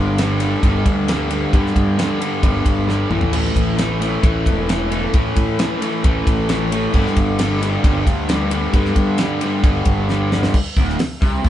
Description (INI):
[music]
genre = classic rock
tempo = 133 BPM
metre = 4/4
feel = straight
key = unclear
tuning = A4 = 443 Hz
[part]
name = distorted electric guitar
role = riff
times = 0.0-11.5 s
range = D2 to A3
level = -23 LUFS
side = right 4 dB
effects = distortion
[part]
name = raw garage guitar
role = riff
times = 0.0-11.5 s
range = D2 to A3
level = -22 LUFS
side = left 4 dB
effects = overdrive
[part]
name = fuzz fingered electric bass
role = bass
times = 0.0-11.5 s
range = D1 to A2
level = -22 LUFS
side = equal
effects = overdrive
[part]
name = damped 70s drum kit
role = drums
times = 0.2-11.5 s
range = crash cymbal, hi-hat, kick drum, ride cymbal, snare drum, toms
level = -19 LUFS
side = equal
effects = none
[sound]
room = moderate small room reverb, RT60 0.5 s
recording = band playing live in one room, nothing above 11.0 kHz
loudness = -15 LUFS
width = side -12 dB against mid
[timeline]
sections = 0.0-10.5 A section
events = drum fill 2.9-3.3, 10.1-10.5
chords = 0.0 G5; 3.1 A5; 6.9 G5; 10.5 N.C.